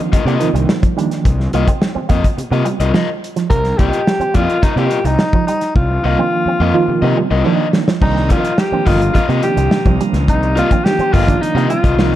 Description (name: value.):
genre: funk.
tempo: 106 BPM.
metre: 4/4.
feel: straight.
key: C minor.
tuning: A4 = 440 Hz.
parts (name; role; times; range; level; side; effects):
barky reed electric piano; stabs; 0.0-1.3, 6.2-12.2 s; Eb3 to F4; -20 LUFS; right 5 dB; overdrive, fast tremolo, tape echo.
warm soul drum kit; drums; 0.0-12.1 s; crash cymbal, hi-hat, kick drum, snare drum; -16 LUFS; equal; none.
crunchy overdriven guitar; accompaniment; 0.1-12.1 s; F4 to Eb5; -21 LUFS; left 6 dB; none.
fuzz picked electric bass; bass; 0.1-12.2 s; G1 to C3; -18 LUFS; equal; overdrive.
electric guitar with an envelope filter; riff; 0.3-12.2 s; F3 to C4; -23 LUFS; right 8 dB; spring reverb.
breathy alto saxophone; melody; 3.5-12.2 s; Eb4 to Bb4; -18 LUFS; left 1 dB; none.
tonewheel organ; sustained chords; 8.0-12.2 s; C5 to Eb6; -31 LUFS; equal; overdrive, stopped rotary speaker.
room: light reverb.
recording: dark, warm production.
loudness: -12 LUFS.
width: side -13 dB against mid.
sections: 0.0-8.0 A section; 8.0-12.2 B section.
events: drum fill 5.8-8.0; alto saxophone solo 8.0-12.2.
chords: 0.0 Cm11.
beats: 0.13 0.69 | 1.25 1.82 2.38 2.94 | 3.51 4.07 4.63 5.20 | 5.76 6.33 6.89 7.46 | 8.02 8.59 9.15 9.72 | 10.29 10.85 11.42 11.98.